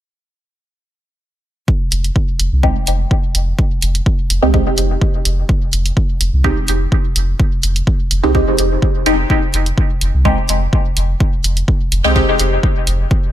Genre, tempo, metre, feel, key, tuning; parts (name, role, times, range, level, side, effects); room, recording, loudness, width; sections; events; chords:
dub techno; 126 BPM; 4/4; straight; F minor; A4 = 440 Hz
electronic kick drum; drums; 1.7-13.2 s; -16 LUFS; equal; overdrive
warm sub bass; bass; 1.9-13.1 s; F1 to C2; -16 LUFS; equal; sidechain pumping
electronic hi-hat; drums; 1.9-13.0 s; -19 LUFS; right 1 dB
filtered dub chord stab; stabs; 2.6-13.3 s; Ab3 to G4; -17 LUFS; equal; phaser, sidechain pumping, dub echo
little or no reverb; lossy compression artefacts; -13 LUFS; side -12 dB against mid
1.7-13.3 A section
1.7 Fm7